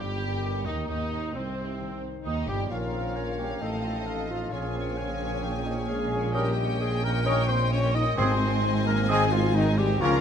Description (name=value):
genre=classical, dramatic, fast romantic movement for symphony orchestra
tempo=131 BPM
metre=4/4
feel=straight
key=Ab major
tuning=A4 = 443 Hz
part: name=rich studio violin section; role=melody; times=0.0-10.2 s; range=C4 to Bb5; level=-37 LUFS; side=left 4 dB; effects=none
part: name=mellow clarinet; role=second line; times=0.0-10.2 s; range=C4 to Eb5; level=-34 LUFS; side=left 2 dB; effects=none
part: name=mellow large flute ensemble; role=second line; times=0.0-10.2 s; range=C5 to Eb6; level=-35 LUFS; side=left 1 dB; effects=none
part: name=mellow oboe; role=second line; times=0.0-10.2 s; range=C4 to Ab5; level=-37 LUFS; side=right 1 dB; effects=none
part: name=rich studio violin section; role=second line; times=0.0-10.2 s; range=C4 to F5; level=-42 LUFS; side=equal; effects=none
part: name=mellow bassoon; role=accompaniment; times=0.0-10.2 s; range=C3 to F4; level=-39 LUFS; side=right 2 dB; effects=none
part: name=rich symphonic viola section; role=accompaniment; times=0.0-10.2 s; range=Bb3 to G4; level=-40 LUFS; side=equal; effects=none
part: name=bright trombone section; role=sustained chords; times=0.0-10.2 s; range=C3 to Eb4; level=-39 LUFS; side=right 4 dB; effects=none
part: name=mellow French horn section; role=sustained chords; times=0.0-10.2 s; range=C3 to Eb4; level=-35 LUFS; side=left 5 dB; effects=none
part: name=concert harp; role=arpeggios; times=0.0-10.2 s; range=G2 to F5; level=-36 LUFS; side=left 11 dB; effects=none
part: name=warm trumpet section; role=stabs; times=0.0-10.2 s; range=C4 to Bb4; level=-37 LUFS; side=equal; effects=none
part: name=dark symphonic cello section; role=bass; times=0.0-10.2 s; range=C2 to Bb2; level=-33 LUFS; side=right 2 dB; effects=none
part: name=dark tuba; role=bass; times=0.0-10.2 s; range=G1 to Eb2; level=-33 LUFS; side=right 4 dB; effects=none
part: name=rich symphonic double bass section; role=bass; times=0.0-10.2 s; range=G1 to Eb2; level=-33 LUFS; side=right 2 dB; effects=none
part: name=timpani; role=percussion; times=8.2-8.8 s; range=Ab2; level=-32 LUFS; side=left 1 dB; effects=none
room=moderate recital hall reverb, RT60 1.5 s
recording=close, detailed microphones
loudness=-24 LUFS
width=side -8 dB against mid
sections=0.0-10.2 A section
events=none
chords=0.0 Eb7/G; 0.9 Ab; 2.7 Bbm; 3.6 F7/A; 4.5 Bbm7; 6.3 Eb7/Bb; 8.2 Ab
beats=0.43 | 0.89 1.35 1.80 2.26 | 2.71 3.17 3.62 4.08 | 4.53 4.98 5.44 5.89 | 6.35 6.80 7.26 7.72 | 8.18 8.64 9.10 9.55 | 10.02